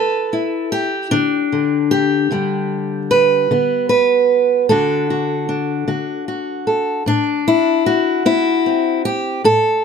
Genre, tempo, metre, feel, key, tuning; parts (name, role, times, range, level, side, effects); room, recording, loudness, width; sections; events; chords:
folk, solo fingerstyle acoustic guitar; 50 BPM (dotted quarters); 6/8; straight; D mixolydian; A4 = 439 Hz
fingerpicked steel-string acoustic guitar; solo; 0.0-9.8 s; D2 to B4; -14 LUFS; equal
little or no reverb; close, detailed microphones; -15 LUFS; side -6 dB against mid
0.0-7.1 A section; 7.1-9.8 B section
0.0 Dsus2; 2.3 G; 4.7 D; 7.1 Am